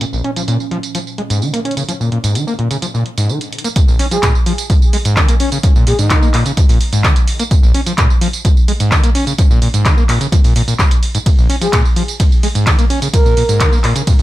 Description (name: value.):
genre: acid house.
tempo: 128 BPM.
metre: 4/4.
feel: straight.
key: Bb minor pentatonic.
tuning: A4 = 439 Hz.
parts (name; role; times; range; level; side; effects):
warbly tape-like pad; sustained chords; 0.0-3.7 s; Bb2 to Db4; -28 LUFS; right 3 dB; chorus, built-in reverb, sidechain pumping.
overdriven acid bass; riff; 0.0-14.2 s; Bb1 to Db4; -17 LUFS; equal; distortion, tube saturation, lush chorus, vintage 12-bit sampler grit, ping-pong delay.
punchy analog drum machine; drums; 0.0-14.2 s; handclaps, hi-hat, ride cymbal, tambourine; -20 LUFS; right 1 dB; low-pass filter on hats, low-pass filter on toms, low-pass filter on snare, low-pass filter on perc, low-pass filter on cymbals, low-pass filter on room.
electronic kick drum; drums; 3.8-14.2 s; none; -12 LUFS; equal; none.
breathy flute-like synth lead; melody; 4.1-6.3, 11.6-13.8 s; Eb4 to Bb4; -21 LUFS; right 1 dB; chorus, dub echo.
room: light reverb.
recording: none.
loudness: -11 LUFS.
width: side -16 dB against mid.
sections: 0.0-3.8 A section; 3.8-14.2 B section.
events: drop 3.8-14.2.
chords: 0.0 Bbm.